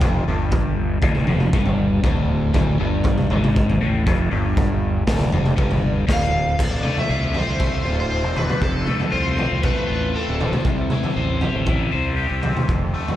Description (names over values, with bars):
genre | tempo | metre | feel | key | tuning
psychedelic rock | 118 BPM | 4/4 | straight | D dorian | A4 = 441 Hz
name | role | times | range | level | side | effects
crunchy overdriven guitar | riff | 0.0-13.2 s | D2 to C5 | -23 LUFS | left 1 dB | phaser
fuzz fingered electric bass | bass | 0.0-12.9 s | D1 to C2 | -24 LUFS | equal | overdrive
raw garage drum kit | drums | 0.0-13.2 s | crash cymbal, kick drum, snare drum, toms | -21 LUFS | equal | none
overdriven slide guitar | melody | 6.1-10.5 s | A4 to F5 | -26 LUFS | equal | lush chorus, analog delay
room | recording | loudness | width
moderate lush hall reverb, RT60 1.9 s, small room ambience | dreamy mix soaked in reverb | -18 LUFS | side -13 dB against mid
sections
0.0-6.6 A section; 6.6-13.2 B section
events
none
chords
0.0 Dm; 6.6 Dm7; 8.6 F; 10.7 C